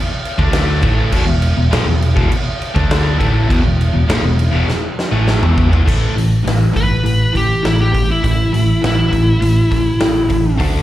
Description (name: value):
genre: hard rock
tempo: 101 BPM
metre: 4/4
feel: straight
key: unclear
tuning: A4 = 440 Hz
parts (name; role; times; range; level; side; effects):
- huge arena drum kit; drums; 0.3-10.7 s; crash cymbal, hi-hat, kick drum, snare drum, toms; -18 LUFS; equal; none
- cranked stack guitar; riff; 0.4-10.8 s; E2 to D4; -17 LUFS; equal; overdrive, slapback echo
- fingered electric bass; bass; 0.4-10.8 s; E1 to E2; -16 LUFS; equal; none
- smooth overdriven lead guitar; melody; 6.8-10.6 s; E4 to B4; -17 LUFS; left 1 dB; slapback echo
room: little or no reverb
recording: live gig heard through the venue's PA, club reverb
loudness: -12 LUFS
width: side -14 dB against mid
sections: 0.0-5.9 A section; 5.9-10.8 B section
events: drum fill 4.7-5.9; lead electric guitar solo 5.9-10.8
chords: 0.0 E5; 5.9 A5